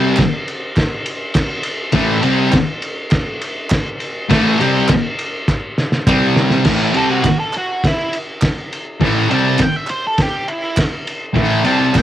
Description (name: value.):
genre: garage rock duo or trio.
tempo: 102 BPM.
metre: 4/4.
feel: straight.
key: unclear.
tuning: A4 = 440 Hz.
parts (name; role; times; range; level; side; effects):
thick fuzz guitar; riff; 0.0-12.0 s; A2 to C4; -14 LUFS; equal; distortion.
cloth-damped thuddy drum kit; drums; 0.2-12.0 s; crash cymbal, kick drum, ride cymbal, snare drum; -18 LUFS; equal; cassette tape.
group handclap; percussion; 0.2-12.0 s; none; -27 LUFS; right 5 dB; none.
octave-fuzz lead guitar; melody; 7.0-12.0 s; E4 to A5; -20 LUFS; right 1 dB; distortion, cassette tape, tape echo.
room: light reverb.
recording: home recording on cassette.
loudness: -14 LUFS.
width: side -12 dB against mid.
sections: 0.0-6.7 A section; 6.7-12.0 B section.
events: drum fill 5.5-6.7; lead electric guitar solo 6.7-12.0.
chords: 0.0 A5; 6.1 C5; 6.7 A5.